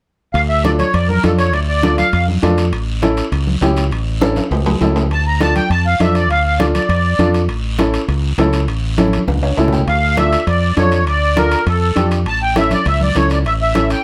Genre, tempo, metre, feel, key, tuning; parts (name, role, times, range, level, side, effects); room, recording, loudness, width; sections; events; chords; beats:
latin, cumbia; 201 BPM; 4/4; straight; D harmonic minor; A4 = 441 Hz
accordion; melody; 0.3-2.3, 5.1-7.3, 9.9-14.0 s; A4 to Bb5; -19 LUFS; equal; light tremolo tuning
modern bright fingered electric bass; bass; 0.3-13.9 s; A1 to F2; -19 LUFS; equal
congas; percussion; 0.3-13.9 s; -24 LUFS; equal
guiro; percussion; 0.3-14.0 s; -33 LUFS; equal
timbales; percussion; 0.3-14.0 s; -27 LUFS; equal
warm upright piano; accompaniment; 0.6-14.0 s; C#4 to G5; -20 LUFS; equal
light reverb; -15 LUFS; mono
0.3-9.9 A section; 9.9-14.0 A section
drum fill 4.2-5.1, 9.0-9.9; upright piano fill 9.3-9.9
0.3 Dm; 2.7 A; 5.1 Dm; 7.5 A; 9.9 Dm; 12.3 A
| 0.35 0.65 0.94 1.24 | 1.54 1.83 2.13 2.43 | 2.73 3.02 3.32 3.62 | 3.92 4.21 4.51 4.81 | 5.11 5.40 5.70 6.00 | 6.30 6.59 6.89 7.19 | 7.49 7.79 8.08 8.38 | 8.68 8.98 9.28 9.57 | 9.87 10.17 10.47 10.77 | 11.07 11.37 11.66 11.96 | 12.26 12.56 12.86 13.16 | 13.45 13.75